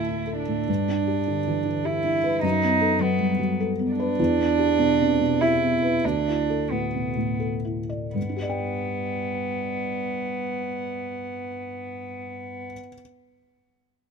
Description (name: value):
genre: neoclassical piano and strings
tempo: 78-104 BPM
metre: 3/4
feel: rubato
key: G major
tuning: A4 = 444 Hz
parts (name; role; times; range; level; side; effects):
- warm cello; second line; 0.0-12.7 s; B3 to E4; -25 LUFS; right 4 dB; none
- felt-muted upright piano; accompaniment; 0.0-13.0 s; D2 to G5; -26 LUFS; left 1 dB; none
- dark studio string section; sustained chords; 0.0-0.7 s; A3 to E5; -41 LUFS; equal; none
room: little or no reverb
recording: minimal, uncompressed stereo recording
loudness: -22 LUFS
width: side -6 dB against mid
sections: 0.7-8.2 A section; 8.2-12.7 B section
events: slowing down 3.3-8.2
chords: 0.0 Dsus2; 0.7 G5; 2.4 B7/F#; 4.2 Em; 6.0 Dsus2; 8.2 G